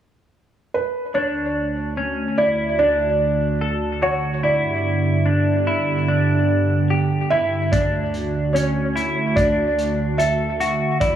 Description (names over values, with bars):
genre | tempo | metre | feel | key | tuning
dream pop | 73 BPM | 4/4 | straight | D major | A4 = 440 Hz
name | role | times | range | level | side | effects
felt-muted upright piano | melody | 0.7-11.2 s | B4 to E5 | -22 LUFS | right 2 dB | tape echo
semi-hollow electric guitar | arpeggios | 1.1-11.2 s | C#4 to A4 | -23 LUFS | left 2 dB | analog chorus, tape echo
hollow soft pad | sustained chords | 1.2-11.2 s | D2 to G4 | -22 LUFS | right 2 dB | chorus
vintage drum kit | drums | 7.7-11.2 s | hi-hat, kick drum | -24 LUFS | equal | none
room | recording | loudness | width
moderate spring reverb, RT60 2.5 s | echo-heavy mix, studio ambience | -18 LUFS | side -10 dB against mid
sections
0.0-1.2 A section; 1.2-11.2 B section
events
none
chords
0.0 N.C.; 1.2 Dmaj7; 4.4 G; 7.7 Dmaj7